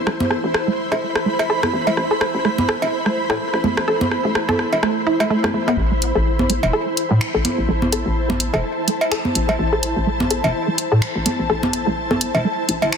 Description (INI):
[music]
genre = minimal techno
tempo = 126 BPM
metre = 4/4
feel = swing 57% on 16ths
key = A minor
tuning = A4 = 440 Hz
[part]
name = hollow knocking FM bass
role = bass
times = 0.0-12.9 s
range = E1 to A2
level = -22 LUFS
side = left 1 dB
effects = high-pass filter
[part]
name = ethereal airy pad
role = texture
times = 0.0-13.0 s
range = E4 to B5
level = -22 LUFS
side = equal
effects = ensemble chorus, built-in reverb, tremolo
[part]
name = resonant blip pluck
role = riff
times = 0.1-12.7 s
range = A3 to A4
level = -23 LUFS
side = right 1 dB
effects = chorus, cassette tape, digital delay
[part]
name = electronic rim click, congas and cowbell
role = percussion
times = 0.1-12.9 s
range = none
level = -22 LUFS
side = right 1 dB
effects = soft clipping on snare, tape echo
[part]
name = garage drum kit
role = drums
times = 6.0-13.0 s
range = finger snaps, hi-hat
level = -23 LUFS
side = equal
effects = soft clipping on snare
[sound]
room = light reverb, digital ambience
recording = dense, heavily limited modern master, high-pass filter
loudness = -17 LUFS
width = side -6 dB against mid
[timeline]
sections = 0.0-5.8 A section; 5.8-13.0 B section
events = filter sweep on synth arpeggio sound 0.0-5.8; build-up 5.8-13.0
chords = 0.0 Am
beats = | 0.07 0.54 1.02 1.50 | 1.97 2.45 2.92 3.40 | 3.88 4.35 4.83 5.31 | 5.78 6.26 6.73 7.21 | 7.69 8.16 8.64 9.12 | 9.59 10.07 10.54 11.02 | 11.50 11.97 12.45 12.93